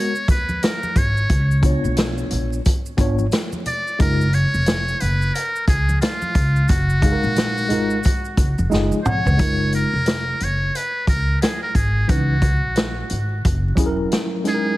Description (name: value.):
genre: hip hop, jazz-hop.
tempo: 89 BPM.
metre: 4/4.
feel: swing 60% on 16ths.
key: F# major.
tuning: A4 = 439 Hz.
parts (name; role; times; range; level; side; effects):
trumpet with metal mute; melody; 0.0-14.8 s; E#4 to D5; -24 LUFS; equal; analog delay.
tine electric piano; accompaniment; 0.0-14.8 s; E3 to F#5; -23 LUFS; left 1 dB; overdrive, fast stereo tremolo.
maracas and congas; percussion; 0.2-9.4 s; none; -32 LUFS; right 1 dB; none.
upright bass; bass; 0.3-14.0 s; E1 to D#2; -20 LUFS; equal; none.
vintage drum kit; drums; 0.3-14.6 s; hi-hat, kick drum, snare drum, toms; -21 LUFS; equal; none.
room: light reverb, studio ambience.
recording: heavily compressed radio sound, vinyl crackle.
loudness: -17 LUFS.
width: side -17 dB against mid.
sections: 0.0-9.4 A section; 9.4-14.8 A section.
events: tine electric piano fill 8.4-9.4; drum fill 8.7-9.4.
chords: 0.0 G#m9; 1.3 C#7b9; 4.0 F#maj13; 12.1 C#m9; 13.4 F#7.